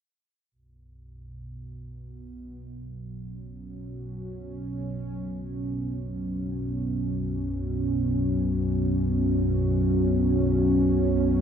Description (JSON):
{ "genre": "dark ambient drone", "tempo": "free time", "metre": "none", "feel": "none", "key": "unclear", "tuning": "A4 = 440 Hz", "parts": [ { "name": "sweeping resonant pad", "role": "sustained chords", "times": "0.5-11.4 s", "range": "B2 to C#4", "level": "-26 LUFS", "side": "equal", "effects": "chorus" }, { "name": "deep rumbling drone", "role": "drone", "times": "0.8-11.4 s", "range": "B1 to F#2", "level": "-31 LUFS", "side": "equal", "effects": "built-in reverb, lush chorus" } ], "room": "wet huge ambient reverb, RT60 8.4 s", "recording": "dreamy mix soaked in reverb", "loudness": "-24 LUFS", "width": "side -8 dB against mid", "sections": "0.5-11.4 A section", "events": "fade-in on synth drone 0.5-11.4; fade-in on analog synth pad 0.5-11.4", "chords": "0.5 Bsus2" }